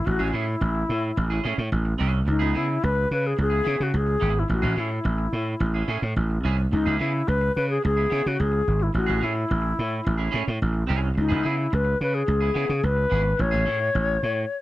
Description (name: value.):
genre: disco.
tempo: 108 BPM.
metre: 4/4.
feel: straight.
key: unclear.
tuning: A4 = 440 Hz.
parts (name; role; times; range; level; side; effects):
bright alto flute; melody; 0.0-14.6 s; D#4 to C#5; -26 LUFS; left 3 dB; none.
clean electric guitar; accompaniment; 0.1-14.4 s; B3 to G#4; -31 LUFS; right 6 dB; lush chorus.
gritty slap bass; bass; 0.1-14.4 s; G#1 to C#3; -23 LUFS; right 1 dB; overdrive.
room: small room ambience.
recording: none.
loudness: -21 LUFS.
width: side -16 dB against mid.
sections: 0.0-14.6 A section.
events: none.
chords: 0.1 Amaj7; 2.3 C#m7; 4.5 Amaj7; 6.7 C#m7; 8.9 Amaj7; 11.2 C#m7; 13.4 Amaj7.